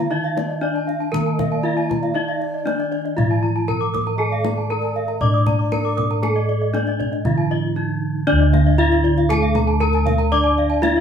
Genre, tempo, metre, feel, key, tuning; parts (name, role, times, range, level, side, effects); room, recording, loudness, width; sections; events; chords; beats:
Balinese gamelan; 118 BPM; 4/4; straight; D pelog; A4 = 441 Hz
gamelan-type bronze metallophone; melody; 0.0-11.0 s; D4 to D5; -22 LUFS; left 1 dB
gamelan-type bronze metallophone; accompaniment; 0.0-11.0 s; D3 to D4; -27 LUFS; right 3 dB
gamelan-type bronze metallophone; arpeggios; 0.0-10.8 s; D5 to Eb6; -28 LUFS; right 5 dB
gamelan-type bossed gongs; bass; 0.0-11.0 s; D2 to D5; -21 LUFS; equal
gamelan-type bronze metallophone; arpeggios; 0.1-11.0 s; D5 to D6; -26 LUFS; left 4 dB
breathy mellow xiao; second line; 0.4-6.8 s; D5 to E5+45c; -31 LUFS; equal
kendang; percussion; 0.4-11.0 s; -27 LUFS; left 2 dB
moderate studio ambience, RT60 0.5 s; band playing live in one room; -17 LUFS; side -8 dB against mid
0.0-8.3 A section; 8.3-11.0 A section
break 7.5-8.3
| 0.11 0.62 1.13 1.64 | 2.15 2.66 3.17 3.68 | 4.19 4.70 5.21 5.72 | 6.23 6.74 7.25 7.76 | 8.28 8.79 9.29 9.81 | 10.32 10.83